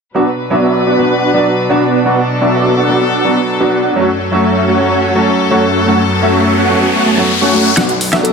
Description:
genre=EDM, festival progressive house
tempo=126 BPM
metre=4/4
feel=straight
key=B minor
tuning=A4 = 443 Hz
part: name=warm baby grand piano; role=accompaniment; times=0.1-8.3 s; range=F#3 to F#4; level=-17 LUFS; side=right 2 dB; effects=digital delay
part: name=rich chamber string section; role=sustained chords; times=0.2-8.3 s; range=F#2 to B4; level=-16 LUFS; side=left 2 dB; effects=low-pass filter
part: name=supersaw chords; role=riff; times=0.2-8.3 s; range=A3 to A5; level=-13 LUFS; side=equal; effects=lush chorus, low-pass filter, digital delay
part: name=riser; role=sound effects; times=5.4-8.3 s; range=none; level=-19 LUFS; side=left 2 dB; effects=none
part: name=wide unison pluck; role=arpeggios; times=7.8-8.3 s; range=E5 to F#5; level=-20 LUFS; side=left 1 dB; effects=digital delay
part: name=wide detuned saw bass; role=bass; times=7.8-8.3 s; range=B1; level=-21 LUFS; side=left 2 dB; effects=chorus, high-pass filter
part: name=big-room dance drum kit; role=drums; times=7.8-8.3 s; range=hi-hat, snare drum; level=-15 LUFS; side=left 1 dB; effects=overdrive
part: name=bell-like FM electric piano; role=melody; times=8.2-8.3 s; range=A4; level=-15 LUFS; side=left 4 dB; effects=chorus
room=moderate lush hall reverb, RT60 2.3 s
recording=none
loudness=-10 LUFS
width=side -5 dB against mid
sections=0.2-7.8 A section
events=riser 5.4-7.8, 7.8-8.3; drum fill 7.8-8.3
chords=0.2 Bm; 4.0 F#m; 7.8 Bm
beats=| 0.15 0.63 1.10 1.58 | 2.06 2.53 3.01 3.48 | 3.96 4.44 4.91 5.39 | 5.87 6.34 6.82 7.29 | 7.77 8.25

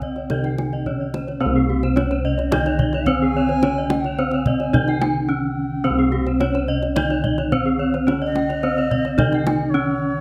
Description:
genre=Balinese gamelan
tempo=108 BPM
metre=4/4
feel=straight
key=C pelog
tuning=A4 = 439 Hz
part: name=gamelan-type bronze metallophone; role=melody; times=0.0-10.2 s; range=C4 to Eb4-30c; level=-24 LUFS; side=equal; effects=none
part: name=bright bansuri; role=second line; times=0.0-10.2 s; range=Db5+22c to Ab5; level=-32 LUFS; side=equal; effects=none
part: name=gamelan-type bronze metallophone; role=accompaniment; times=0.0-10.2 s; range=C3 to Eb3-30c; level=-31 LUFS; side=equal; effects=none
part: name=gamelan-type bronze metallophone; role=arpeggios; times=0.0-9.5 s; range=Ab4-20c to G5-30c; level=-32 LUFS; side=equal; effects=none
part: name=gamelan-type bossed gongs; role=bass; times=0.0-10.2 s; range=C2 to Db4+20c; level=-27 LUFS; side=equal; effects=none
part: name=kendang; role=percussion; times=0.0-9.6 s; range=none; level=-27 LUFS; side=equal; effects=none
part: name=gamelan-type bronze metallophone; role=arpeggios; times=0.2-9.6 s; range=G4-30c to Ab5-20c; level=-30 LUFS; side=equal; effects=none
room=light reverb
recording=close, detailed microphones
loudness=-20 LUFS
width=mono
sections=0.0-10.2 A section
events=break 5.0-5.9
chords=none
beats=0.30 0.85 | 1.41 1.97 2.52 3.08 | 3.63 4.19 4.74 5.30 | 5.86 6.41 6.97 7.52 | 8.08 8.63 9.19 9.74

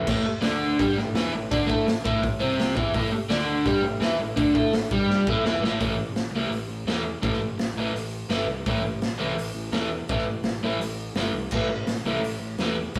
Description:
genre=garage rock duo or trio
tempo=168 BPM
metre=4/4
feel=straight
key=A minor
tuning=A4 = 442 Hz
part: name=crunchy overdriven guitar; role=riff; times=0.0-13.0 s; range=A2 to A4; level=-27 LUFS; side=equal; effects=spring reverb
part: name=fuzz picked electric bass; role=bass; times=0.0-13.0 s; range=G1 to A2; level=-36 LUFS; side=equal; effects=overdrive
part: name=raw garage drum kit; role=drums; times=0.1-13.0 s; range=crash cymbal, hi-hat, kick drum, snare drum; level=-31 LUFS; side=equal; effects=none
room=moderate stone room reverb, RT60 0.9 s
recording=rough rehearsal-room recording, tube saturation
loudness=-25 LUFS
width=mono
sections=0.1-5.8 A section; 5.8-13.0 B section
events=drum fill 5.1-5.8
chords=0.1 Am; 5.8 A5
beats=| 0.08 0.43 0.79 1.15 | 1.51 1.87 2.23 2.58 | 2.94 3.30 3.66 4.02 | 4.37 4.73 5.09 5.45 | 5.80 6.16 6.52 6.87 | 7.23 7.59 7.95 8.30 | 8.66 9.02 9.38 9.73 | 10.09 10.45 10.81 11.16 | 11.52 11.88 12.24 12.59 | 12.95

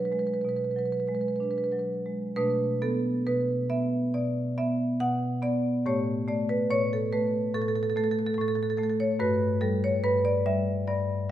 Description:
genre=classical, contemporary piece for solo marimba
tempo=61-73 BPM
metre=4/4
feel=rubato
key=B minor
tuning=A4 = 441 Hz
part: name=marimba with medium hard mallets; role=solo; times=0.0-11.3 s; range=G2 to F#5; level=-25 LUFS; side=equal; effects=none
room=wet recital hall reverb, RT60 1.4 s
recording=none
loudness=-25 LUFS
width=side -12 dB against mid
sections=0.0-2.4 A section; 2.4-11.3 A section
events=none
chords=0.0 Bm6; 2.4 Bm7; 5.8 A9; 9.2 Gsus2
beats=0.43 1.39 | 2.35 3.26 4.13 4.99 | 5.84 6.70 7.54 8.37 | 9.20 10.03 10.87

